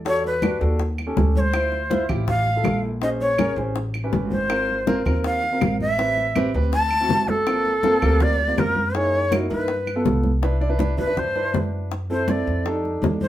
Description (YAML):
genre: Afro-Cuban jazz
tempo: 162 BPM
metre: 4/4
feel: straight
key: unclear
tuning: A4 = 441 Hz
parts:
  - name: upright bass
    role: bass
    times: 0.0-13.3 s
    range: G1 to G2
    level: -25 LUFS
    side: equal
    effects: none
  - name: bright reedy shakuhachi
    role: melody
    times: 0.1-13.3 s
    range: A4 to A5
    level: -22 LUFS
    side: equal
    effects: none
  - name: warm concert grand piano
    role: accompaniment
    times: 0.1-13.3 s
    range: Bb3 to D5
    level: -26 LUFS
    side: right 1 dB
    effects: none
  - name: bongos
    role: percussion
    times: 0.1-13.2 s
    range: none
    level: -28 LUFS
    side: left 4 dB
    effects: none
  - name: congas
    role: percussion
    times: 0.1-13.3 s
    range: none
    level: -27 LUFS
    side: right 1 dB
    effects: none
  - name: claves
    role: percussion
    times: 0.4-10.1 s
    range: none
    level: -35 LUFS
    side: right 5 dB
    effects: none
room: moderate studio reverb, RT60 0.6 s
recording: band playing live in one room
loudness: -19 LUFS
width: side -13 dB against mid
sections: 0.0-10.4 A section; 10.4-13.3 B section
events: shakuhachi solo 10.4-13.3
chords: 0.1 Em11; 0.8 Eb7#11; 1.5 Dm9; 3.0 Bbm9; 3.8 A9; 4.5 Ab6; 6.0 Am7; 6.7 D7; 7.5 Gm11; 8.9 Gb13; 9.7 G7; 10.4 Cmaj9; 11.9 F#m7b5; 12.7 F13